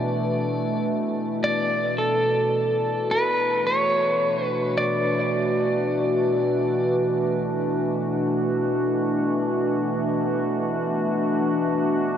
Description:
ambient; 54 BPM; 3/4; straight; D major; A4 = 440 Hz
pedal steel guitar; melody; 0.0-7.0 s; A4 to D5; -24 LUFS; equal; shimmer reverb, diffuse ambient delay
evolving wavetable pad; sustained chords; 0.0-12.2 s; B2 to F#4; -22 LUFS; equal; chorus, built-in reverb, shimmer reverb
wet huge ambient reverb, RT60 6.9 s; worn, warbling old tape, cassette tape, warbly pitch drift; -21 LUFS; side -9 dB against mid
0.0-1.4 A section; 1.4-12.2 B section
0.0 D

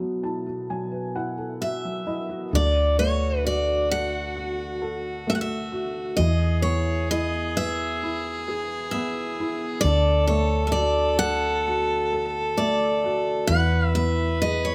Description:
acoustic folk-pop ballad; 66 BPM; 4/4; straight; A4 = 441 Hz
felt-muted upright piano; accompaniment; 0.0-14.7 s; B2 to A5; -32 LUFS; equal
picked steel-string acoustic guitar; melody; 1.6-14.7 s; C#5 to F#5; -28 LUFS; equal
rich violin; second line; 2.5-14.7 s; F#4 to B4; -31 LUFS; equal
woody fretless electric bass; bass; 2.5-14.7 s; D2 to E2; -28 LUFS; equal
little or no reverb; close, detailed microphones; -24 LUFS; mono
0.0-2.5 A section; 2.5-14.7 B section
0.0 B7sus4; 2.5 D; 6.2 E; 9.8 D; 13.5 E

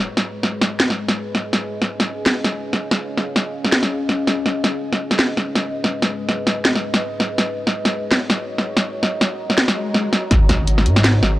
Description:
half-time drum and bass; 164 BPM; 4/4; swing 57% on 16ths, half-time; G# dorian; A4 = 443 Hz
deep dark ambient pad; sustained chords; 0.0-11.4 s; G#3 to A#5; -26 LUFS; left 1 dB; chorus, built-in reverb, vintage 12-bit sampler grit, sidechain pumping
sub drop, swell and impact; sound effects; 0.0-0.1, 9.8-11.4 s; -26 LUFS; left 1 dB
drum and bass drum kit; drums; 0.2-11.3 s; hi-hat, snare drum; -17 LUFS; equal
saturated sub bass; bass; 10.3-11.4 s; G#1 to G#2; -16 LUFS; equal
electronic kick drum; drums; 10.3-10.6 s; -16 LUFS; equal
little or no reverb; dry, gritty hardware recording, cassette tape; -17 LUFS; side -16 dB against mid
0.0-10.3 A section; 10.3-11.4 B section
swell 9.8-10.3; drop 10.3-11.4; impact 10.3-11.4
0.0 G#m; 1.5 C#add9; 4.5 G#m; 7.4 F#6; 10.3 G#m

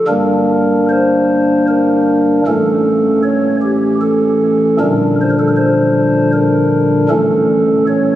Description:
classical, chorale-style piece for pipe organ; 77 BPM; 3/4; straight; A4 = 440 Hz
pipe organ, stopped flute; solo; 0.0-8.2 s; G1 to C#5; -11 LUFS; equal
wet church reverb, RT60 3.4 s; recorded on a phone in the room, studio reverb, compression, nothing above 10.8 kHz; -11 LUFS; side -13 dB against mid
0.1-8.2 A section
0.1 Gm; 2.5 A; 4.8 Gm/Bb; 7.1 A

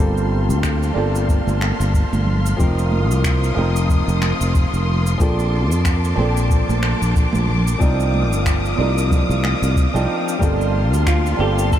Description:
sunset chillout; 92 BPM; 4/4; swing 57% on 16ths; G minor; A4 = 440 Hz
flamenco guitar; accompaniment; 0.0-11.8 s; F3 to Bb4; -22 LUFS; right 1 dB; auto-pan, analog delay
dark symphonic string section; sustained chords; 0.0-11.8 s; Bb3 to Eb6; -26 LUFS; left 1 dB
sustaining fretless electric bass; bass; 0.0-11.8 s; F1 to F2; -19 LUFS; equal
electronic cabasa and finger snaps; drums; 0.2-11.8 s; -30 LUFS; equal
electronic kick drum; drums; 0.6-11.8 s; -18 LUFS; equal; overdrive
congas; percussion; 1.5-9.6 s; -30 LUFS; right 4 dB
clean electric guitar; melody; 11.1-11.8 s; F4 to A4; -23 LUFS; equal; ensemble chorus, analog delay
moderate huge ambient reverb, RT60 7.3 s; dreamy mix soaked in reverb; -16 LUFS; side -11 dB against mid
0.0-11.8 A section
0.0 Gm11; 2.6 F7sus4; 5.2 Bbmaj9; 7.8 Cm11; 10.4 Gm11

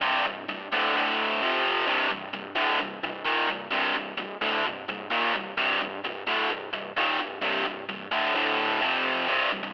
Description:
metal; 130 BPM; 4/4; straight; C minor; A4 = 438 Hz
high-gain distorted guitar; solo; 0.0-9.7 s; C2 to F3; -23 LUFS; equal; distortion, cassette tape
light reverb; home recording on cassette, telephone sound; -23 LUFS; side -26 dB against mid
0.0-9.3 A section
0.0 C5; 0.9 D5; 1.4 F5; 1.9 Cm; 8.3 D5; 8.8 F5

